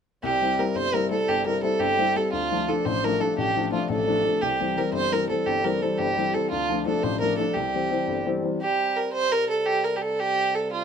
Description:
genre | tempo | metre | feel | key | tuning
celtic folk | 115 BPM (dotted quarters) | 6/8 | straight | C mixolydian | A4 = 439 Hz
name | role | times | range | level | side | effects
dark fiddle | melody | 0.2-10.8 s | F4 to C5 | -24 LUFS | right 2 dB | none
warm upright piano | accompaniment | 0.2-8.6 s | G1 to E4 | -26 LUFS | left 6 dB | none
pedal harmonium | drone | 0.2-10.8 s | C3 to G3 | -35 LUFS | right 3 dB | none
room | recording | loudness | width
moderate studio reverb, RT60 0.6 s | minimal, uncompressed stereo recording | -22 LUFS | side -7 dB against mid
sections
0.2-8.6 A section; 8.6-10.8 A section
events
none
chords
0.2 C; 2.3 Dm; 4.4 C; 6.5 Dm; 7.5 C; 8.6 C5

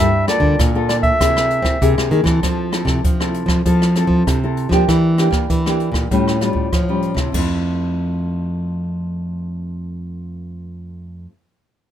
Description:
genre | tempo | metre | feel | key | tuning
samba and choro | 98 BPM | 4/4 | straight | F major | A4 = 441 Hz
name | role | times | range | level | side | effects
clear clarinet | melody | 0.0-2.1 s | D5 to E5 | -18 LUFS | right 1 dB | none
nylon-string guitar | accompaniment | 0.0-11.3 s | A2 to A4 | -21 LUFS | left 2 dB | none
nylon-string guitar | bass | 0.0-11.3 s | F2 to C4 | -19 LUFS | right 1 dB | none
jazz brush drum kit | drums | 0.3-7.5 s | crash cymbal, hi-hat, kick drum, rim click | -20 LUFS | equal | none
room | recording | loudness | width
little or no reverb | minimal, uncompressed stereo recording | -15 LUFS | side -10 dB against mid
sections
0.0-2.4 A section; 2.4-7.3 B section; 7.3-9.8 C section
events
none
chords
0.0 Gm9; 1.2 C7b13; 2.4 Fmaj7; 4.9 Em7b5; 6.1 A7alt; 7.3 Fmaj7

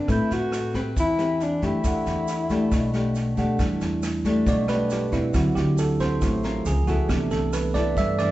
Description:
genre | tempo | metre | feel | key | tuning
bossa nova | 137 BPM | 4/4 | straight | E minor | A4 = 439 Hz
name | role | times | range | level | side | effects
breathy alto saxophone | melody | 0.0-3.2 s | D4 to F#4 | -26 LUFS | left 2 dB | none
barky tine electric piano | accompaniment | 0.0-8.3 s | E3 to G6 | -27 LUFS | right 4 dB | none
nylon-string guitar | accompaniment | 0.0-8.3 s | G2 to B4 | -26 LUFS | left 2 dB | none
upright bass | bass | 0.1-8.3 s | A1 to A2 | -28 LUFS | equal | none
vintage brush drum kit | drums | 0.1-8.3 s | kick drum, rim click, snare drum | -29 LUFS | equal | none
egg shaker | percussion | 0.1-8.3 s | none | -46 LUFS | right 6 dB | none
room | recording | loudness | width
moderate recital hall reverb, RT60 1.3 s | recorded in a church or concert hall, nothing above 8.0 kHz | -21 LUFS | side -15 dB against mid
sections
0.0-3.6 A section; 3.6-8.3 B section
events
tine electric piano solo 3.6-8.3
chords
0.1 Am9; 1.8 Em11; 5.3 D13; 6.7 C#6; 7.1 Cmaj13

